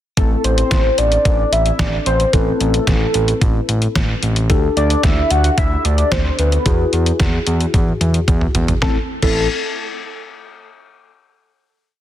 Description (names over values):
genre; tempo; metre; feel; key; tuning
synth-pop; 111 BPM; 4/4; straight; A dorian; A4 = 441 Hz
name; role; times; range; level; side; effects
warm velvety synth lead; melody; 0.2-9.5 s; A4 to F#5; -20 LUFS; left 1 dB; chorus, tremolo, digital delay
mellow tine electric piano; accompaniment; 0.2-9.5 s; C4 to B4; -24 LUFS; left 4 dB; phaser
smooth gliding synth bass; bass; 0.2-9.5 s; A1 to E2; -18 LUFS; equal; none
detuned 8-bit digital drum machine; drums; 0.2-9.4 s; crash cymbal, hi-hat, kick drum, snare drum, toms; -18 LUFS; equal; none
room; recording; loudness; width
light reverb; dense, heavily limited modern master; -14 LUFS; side -12 dB against mid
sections
0.2-8.8 verse; 8.8-11.0 final chord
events
drum fill 7.7-8.8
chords
0.2 Am; 4.5 Dsus4; 6.7 Eadd9; 8.8 Am